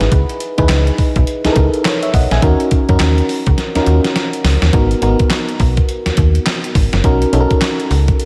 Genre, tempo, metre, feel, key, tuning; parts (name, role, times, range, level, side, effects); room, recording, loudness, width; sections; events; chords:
R&B, new jack swing; 104 BPM; 4/4; swing 61% on 16ths; G# minor; A4 = 440 Hz
FM electric piano; accompaniment; 0.0-8.3 s; B3 to G#5; -19 LUFS; equal; slapback echo
slap-like FM bass; bass; 0.0-8.1 s; F#1 to F#2; -16 LUFS; equal
clean 12-bit digital drum machine; drums; 0.0-8.3 s; handclaps, hi-hat, kick drum, snare drum; -18 LUFS; equal
moderate lush hall reverb, RT60 2.1 s; big arena sound; -14 LUFS; mono
0.0-4.7 A section; 4.7-8.3 B section
drum fill 3.6-4.7
0.0 C#m9; 2.4 D#m7; 4.7 G#m7; 7.0 Bmaj7